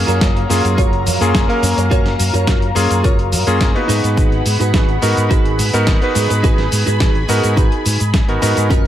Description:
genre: nu-disco, nu disco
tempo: 106 BPM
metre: 4/4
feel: straight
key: unclear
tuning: A4 = 443 Hz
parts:
  - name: clear electric grand piano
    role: accompaniment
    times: 0.0-8.7 s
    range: A#3 to E#5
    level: -19 LUFS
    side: equal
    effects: sidechain pumping, analog delay
  - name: lush unison pad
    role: sustained chords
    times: 0.0-8.9 s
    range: F#3 to B5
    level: -23 LUFS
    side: equal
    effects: chorus, phaser, sidechain pumping
  - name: fingered electric bass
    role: bass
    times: 0.0-8.9 s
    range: F#1 to G#2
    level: -18 LUFS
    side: equal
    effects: none
  - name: direct-recorded clean electric guitar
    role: riff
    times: 0.1-8.9 s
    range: C#4 to C#5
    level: -23 LUFS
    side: right 3 dB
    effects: lush chorus, analog delay
  - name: dusty soul sampler-style drum kit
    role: drums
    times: 0.1-8.8 s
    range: cabasa, hi-hat, snare drum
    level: -22 LUFS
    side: equal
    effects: analog delay
  - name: electronic kick drum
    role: drums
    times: 0.2-8.8 s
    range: none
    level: -15 LUFS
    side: equal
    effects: none
room: light reverb, digital ambience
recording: echo-heavy mix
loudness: -12 LUFS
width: side -11 dB against mid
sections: 0.0-8.9 A section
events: none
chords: 0.0 F#maj7; 3.9 G#m7

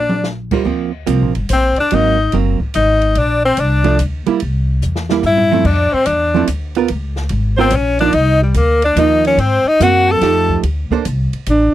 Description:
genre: jazz, small-group swing and bop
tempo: 144 BPM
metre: 3/4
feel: swing 67% on 8ths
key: G minor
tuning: A4 = 442 Hz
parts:
  - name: edgy tenor saxophone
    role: melody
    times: 0.0-10.6 s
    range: G3 to A4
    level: -14 LUFS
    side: left 3 dB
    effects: none
  - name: breathy alto saxophone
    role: second line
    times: 0.0-11.7 s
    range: D4 to A5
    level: -19 LUFS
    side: right 2 dB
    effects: none
  - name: upright bass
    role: bass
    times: 0.0-11.7 s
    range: Gb1 to Ab2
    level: -17 LUFS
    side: equal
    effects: none
  - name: open jazz drum kit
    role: drums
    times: 0.1-11.6 s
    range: crash cymbal, hi-hat, kick drum, ride cymbal, snare drum, toms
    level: -27 LUFS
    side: equal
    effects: none
  - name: archtop guitar, miked and amplified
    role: accompaniment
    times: 0.5-11.0 s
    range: F3 to C5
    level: -16 LUFS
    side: right 10 dB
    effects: none
room: light reverb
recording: dry, close 1970s-style studio recording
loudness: -12 LUFS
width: side -13 dB against mid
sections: 0.7-10.6 A section; 10.6-11.7 B section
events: drum fill 0.0, 4.8-5.6; alto saxophone solo 10.6-11.7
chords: 0.0 Bbadd9; 0.7 Gm7 (rootless); 1.9 Ab9; 3.2 Bb; 4.4 C; 5.6 Fmaj7(no3); 6.9 C#6; 8.1 Cm11; 9.4 Ab9; 10.2 F9; 10.6 Bbmaj9

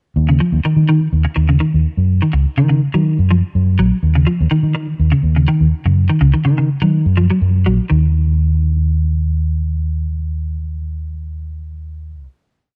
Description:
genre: afrobeat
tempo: 124 BPM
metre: 4/4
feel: straight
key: Eb minor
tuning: A4 = 440 Hz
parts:
  - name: fingered electric bass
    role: bass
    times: 0.2-12.3 s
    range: Bb1 to Eb3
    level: -17 LUFS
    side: equal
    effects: none
  - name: clean electric guitar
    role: arpeggios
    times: 0.3-8.0 s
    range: Db3 to Gb3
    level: -18 LUFS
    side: equal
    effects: analog chorus
room: little or no reverb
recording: dry, close 1970s-style studio recording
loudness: -15 LUFS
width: mono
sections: 0.2-7.9 groove; 7.9-11.8 final note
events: none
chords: 0.2 Ebm7; 7.9 N.C.

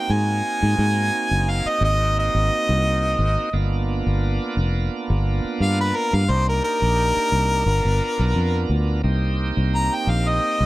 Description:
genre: straight-eighth soul blues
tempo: 87 BPM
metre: 4/4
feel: swing 54% on 16ths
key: C minor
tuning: A4 = 440 Hz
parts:
  - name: bright harmonica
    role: melody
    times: 0.0-10.7 s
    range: A#4 to Bb5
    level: -22 LUFS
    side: equal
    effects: overdrive
  - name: bright tonewheel organ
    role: accompaniment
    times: 0.0-10.7 s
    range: Bb3 to A#4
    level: -27 LUFS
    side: right 4 dB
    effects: overdrive, slow rotary speaker
  - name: fingered electric bass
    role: bass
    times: 0.1-10.7 s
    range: F1 to Ab2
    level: -20 LUFS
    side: equal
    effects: none
room: light reverb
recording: none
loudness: -18 LUFS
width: side -18 dB against mid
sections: 0.0-9.0 A section; 9.0-10.7 A section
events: none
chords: 0.0 Ab7; 3.5 G7#9; 6.3 Cm9; 7.7 G7#9; 9.0 Cm7

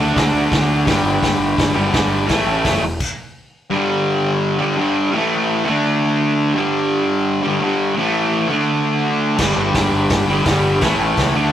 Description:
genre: garage rock duo or trio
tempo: 169 BPM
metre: 4/4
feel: straight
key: unclear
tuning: A4 = 440 Hz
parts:
  - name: overdriven combo organ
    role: sustained chords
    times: 0.0-2.8, 9.4-11.5 s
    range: E4 to E5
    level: -25 LUFS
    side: equal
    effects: none
  - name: fuzz guitar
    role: riff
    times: 0.0-11.5 s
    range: G2 to D4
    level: -16 LUFS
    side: equal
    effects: distortion
  - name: growling fingered electric bass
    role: bass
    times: 0.0-3.0, 9.4-11.5 s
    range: E1 to D2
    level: -22 LUFS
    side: equal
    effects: overdrive
  - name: vintage drum kit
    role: drums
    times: 0.2-3.1, 9.4-11.3 s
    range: crash cymbal, hi-hat, kick drum, snare drum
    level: -20 LUFS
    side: equal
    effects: none
room: moderate stone room reverb, RT60 1.0 s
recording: rough rehearsal-room recording, tube saturation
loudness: -15 LUFS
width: side -10 dB against mid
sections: 0.0-3.7 A section; 3.7-11.5 A section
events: stop 3.0-3.7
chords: 0.0 D; 0.9 G; 2.3 A; 2.8 N.C.; 3.7 G5; 5.1 A5; 5.7 D5; 6.5 G5; 8.0 A5; 8.5 D5; 9.4 G; 10.8 A

